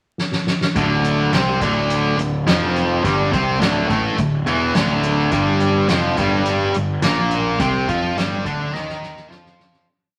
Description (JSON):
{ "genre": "psychedelic rock", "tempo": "105 BPM", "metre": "4/4", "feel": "straight", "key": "D minor", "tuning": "A4 = 439 Hz", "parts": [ { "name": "soft-mallet drum kit", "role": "drums", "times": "0.2-9.9 s", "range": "hi-hat, kick drum, snare drum", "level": "-26 LUFS", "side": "equal", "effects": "none" }, { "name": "overdriven electric guitar", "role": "riff", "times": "0.8-9.9 s", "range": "D2 to F4", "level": "-21 LUFS", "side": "equal", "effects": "none" }, { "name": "fuzz picked electric bass", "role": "bass", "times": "0.8-9.8 s", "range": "D1 to F2", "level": "-25 LUFS", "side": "equal", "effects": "overdrive" } ], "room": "wet studio reverb, RT60 0.9 s", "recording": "vinyl crackle", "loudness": "-19 LUFS", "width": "mono", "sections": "0.0-0.8 pickup bar; 0.8-9.9 riff", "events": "drum fill 0.2-0.8, 8.7-9.9; fade-out 7.6-9.9", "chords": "0.0 N.C.; 0.8 Dm; 5.3 G5" }